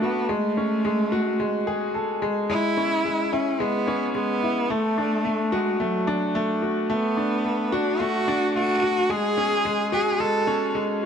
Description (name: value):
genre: electronica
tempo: 109 BPM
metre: 4/4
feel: straight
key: unclear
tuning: A4 = 439 Hz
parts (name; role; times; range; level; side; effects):
- rich cello; melody; 0.0-10.8 s; F#3 to A4; -25 LUFS; right 1 dB; none
- clear upright piano; riff; 0.0-11.1 s; G#3 to A4; -24 LUFS; left 1 dB; tape echo
room: wet echo chamber reverb, RT60 2.5 s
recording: dark, warm production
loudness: -21 LUFS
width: side -7 dB against mid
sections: 0.0-11.1 A section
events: none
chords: 0.3 F#madd9; 2.5 C#m7; 4.7 D; 9.1 F#madd9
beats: | 0.30 0.85 1.40 1.95 | 2.50 3.05 3.60 4.15 | 4.70 5.25 5.80 6.35 | 6.90 7.45 8.00 8.55 | 9.11 9.65 10.21 10.76